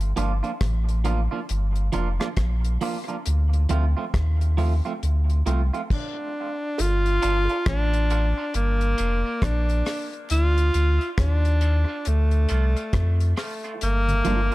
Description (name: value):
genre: dub reggae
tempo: 68 BPM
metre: 4/4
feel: swing 62% on 16ths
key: G minor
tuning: A4 = 440 Hz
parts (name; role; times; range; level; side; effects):
- warm sub bass; bass; 0.0-14.5 s; F1 to F2; -21 LUFS; equal; none
- deep reggae drum kit; drums; 0.0-14.5 s; crash cymbal, hi-hat, kick drum, rim click; -28 LUFS; equal; none
- clean electric guitar; accompaniment; 0.2-14.5 s; F3 to F4; -31 LUFS; right 5 dB; high-pass filter, dub echo
- bright tenor saxophone; melody; 5.9-14.5 s; A3 to F4; -26 LUFS; equal; dub echo
- bongos; percussion; 6.8-13.6 s; none; -40 LUFS; right 6 dB; none
- mellow tonewheel organ; accompaniment; 7.1-14.4 s; G2 to F4; -32 LUFS; equal; none
room: little or no reverb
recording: dark, warm production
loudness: -21 LUFS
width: side -18 dB against mid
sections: 0.0-6.8 A section; 6.8-14.5 B section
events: filter sweep 3.3-13.8; stop 5.9-6.8; part muted 13.8-14.5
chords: 0.0 Gm7; 3.3 Dm7; 6.8 Gm7; 10.3 Dm7; 13.8 Gm7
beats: 0.61 1.49 2.37 | 3.25 4.14 5.02 5.90 | 6.78 7.66 8.54 9.42 | 10.30 11.18 12.06 12.94 | 13.81